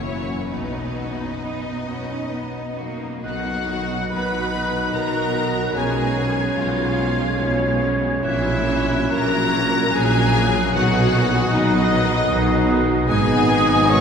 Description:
classical; 65-77 BPM; 3/4; rubato; B major; A4 = 440 Hz
rich studio violin section; melody; 0.0-14.0 s; B4 to C#6; -26 LUFS; left 4 dB
rich studio violin section; second line; 0.0-14.0 s; B3 to D#5; -28 LUFS; left 3 dB
clear studio viola section; accompaniment; 0.0-14.0 s; D#3 to F#4; -28 LUFS; right 1 dB
concert harp; arpeggios; 0.0-14.0 s; F#2 to D#5; -30 LUFS; left 3 dB
rich studio cello section; bass; 0.0-14.0 s; F#2 to D#4; -28 LUFS; right 2 dB
rich studio double bass section; bass; 0.0-14.0 s; F#1 to B1; -29 LUFS; right 2 dB
mellow clarinet; second line; 3.2-14.0 s; D#4 to C#5; -30 LUFS; left 2 dB
mellow hollow silver concert flute; second line; 3.2-14.0 s; D#6 to G#6; -28 LUFS; right 1 dB
warm oboe; second line; 3.2-14.0 s; C#5 to F#5; -28 LUFS; right 2 dB
mellow bassoon; accompaniment; 3.2-14.0 s; B3 to D#4; -30 LUFS; right 1 dB
dark French horn section; sustained chords; 3.2-14.0 s; F#3 to D#4; -25 LUFS; left 1 dB
dark tuba; bass; 3.2-14.0 s; G#1 to B1; -26 LUFS; right 3 dB
wet cathedral reverb, RT60 7.5 s; recorded in a church or concert hall; -18 LUFS; side -7 dB against mid
0.0-3.2 A section; 3.2-14.0 B section
0.0 F#7; 0.5 B; 5.8 C#7/B; 8.2 F#7/A#; 10.7 B; 13.1 G#m

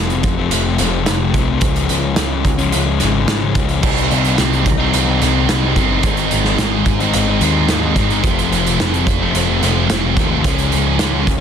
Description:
quiet-loud alternative rock; 109 BPM; 4/4; straight; A4 = 436 Hz
thick fuzz guitar; riff; 0.0-11.4 s; F2 to Eb4; -18 LUFS; left 9 dB; distortion
growling picked electric bass; bass; 0.0-11.4 s; F1 to Eb2; -19 LUFS; right 1 dB; overdrive
loose indie drum kit; drums; 0.1-11.4 s; crash cymbal, hi-hat, kick drum, snare drum; -18 LUFS; right 2 dB
scooped high-gain guitar; riff; 3.8-11.3 s; F2 to Eb4; -19 LUFS; right 18 dB; distortion
little or no reverb; dense, heavily limited modern master; -13 LUFS; side -8 dB against mid
0.0-11.4 A section
0.0 F; 1.6 Db; 3.8 Cm; 6.0 Ab; 8.2 F; 10.4 Db

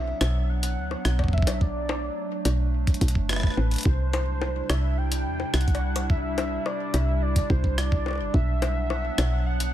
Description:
IDM; 107 BPM; 4/4; straight; B phrygian; A4 = 439 Hz
warm velvety synth lead; melody; 0.0-9.7 s; B4 to G5; -33 LUFS; equal; chorus, ping-pong delay
warbly tape-like pad; sustained chords; 0.0-9.7 s; C3 to E4; -32 LUFS; right 1 dB; chorus, built-in reverb
woody FM bass; bass; 0.0-9.7 s; F#1 to E2; -25 LUFS; equal; tube saturation
jungle sampler-style drum kit; drums; 0.2-9.7 s; bongos, cowbell, hi-hat, rim click; -31 LUFS; left 3 dB; small room reverb, ping-pong delay
electronic kick drum; drums; 1.2-8.5 s; -22 LUFS; equal; small room reverb
pulsing gated texture; texture; 8.6-9.7 s; F#5; -40 LUFS; equal; chorus, built-in reverb, sidechain pumping
little or no reverb; -22 LUFS; side -12 dB against mid
0.0-9.7 A section
0.0 Bm; 3.9 Cadd9; 8.3 Bm

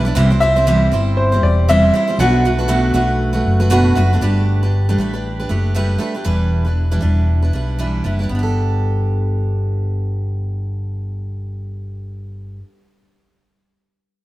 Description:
acoustic pop; 118 BPM; 4/4; swing 60% on 16ths; G major; A4 = 440 Hz
picked steel-string acoustic guitar; accompaniment; 0.0-12.8 s; B2 to C5; -19 LUFS; right 1 dB
fingered electric bass; bass; 0.0-12.6 s; E1 to C2; -17 LUFS; equal
bright upright piano; melody; 0.4-3.9 s; C5 to F#5; -18 LUFS; left 1 dB
moderate plate reverb, RT60 2.5 s; heard from further back in the room; -14 LUFS; side -17 dB against mid
0.0-4.2 A section; 4.2-8.3 B section; 8.3-12.4 C section
0.2 C; 2.2 Bm7; 4.2 Gadd9; 6.3 Em7; 8.3 Gadd9

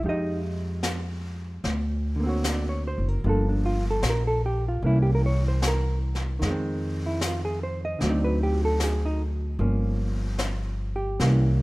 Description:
jazz ballad; 75 BPM; 4/4; swing 67% on 8ths; F minor; A4 = 440 Hz
hollow-body jazz guitar; accompaniment; 0.0-11.6 s; D3 to Eb5; -28 LUFS; right 1 dB
upright bass; bass; 0.0-11.6 s; F#1 to F2; -25 LUFS; equal
vintage brush drum kit; drums; 0.0-11.6 s; brushed snare drum, hi-hat, snare drum; -33 LUFS; left 1 dB
small room ambience; rough home demo mix; -23 LUFS; side -20 dB against mid
0.0-11.6 A section
0.0 Fm9; 1.6 Daug7; 3.2 Gm7; 4.8 C7b9; 6.4 Fm7; 8.0 D7b9; 9.6 Gm7b5

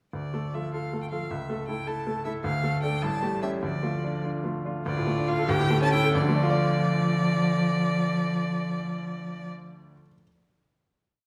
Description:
quick classical-period movement for piano trio; 89-106 BPM (dotted quarters); 6/8; straight; D minor; A4 = 439 Hz
warm violin; melody; 0.1-9.5 s; D5 to A5; -34 LUFS; equal
bright baby grand piano; accompaniment; 0.1-10.3 s; A1 to D5; -29 LUFS; equal
warm cello; second line; 0.5-9.5 s; F3 to G4; -32 LUFS; equal
wet recital hall reverb, RT60 1.3 s; -27 LUFS; mono
0.1-4.9 A section; 4.9-6.1 coda; 6.1-8.7 final chord
slowing down 3.0-6.1
0.1 Dm; 1.3 A/C#; 2.4 Dm; 3.0 A7; 3.6 Dm; 5.5 A7/D; 6.1 Dm

